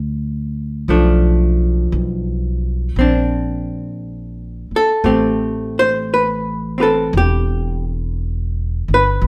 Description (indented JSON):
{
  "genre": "jazz ballad",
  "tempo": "58 BPM",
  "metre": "4/4",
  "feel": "swing 68% on 8ths",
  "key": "A minor",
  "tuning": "A4 = 440 Hz",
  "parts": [
    { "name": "archtop guitar, miked and amplified", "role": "accompaniment", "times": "0.0-9.3 s", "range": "F3 to E5", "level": "-19 LUFS", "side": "equal", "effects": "none" },
    { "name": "upright bass", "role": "bass", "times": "0.0-9.3 s", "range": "E1 to D2", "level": "-21 LUFS", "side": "equal", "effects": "none" }
  ],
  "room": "moderate studio reverb, RT60 0.7 s",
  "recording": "heard from further back in the room",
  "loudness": "-18 LUFS",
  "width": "mono",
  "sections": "0.0-9.3 A section",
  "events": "none",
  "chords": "0.0 G5; 0.9 Bm7b5; 3.0 Bbadd9; 5.1 Am9",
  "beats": "| 0.89 1.94 2.98 4.01 | 5.05 6.09 7.13 8.17 | 9.21"
}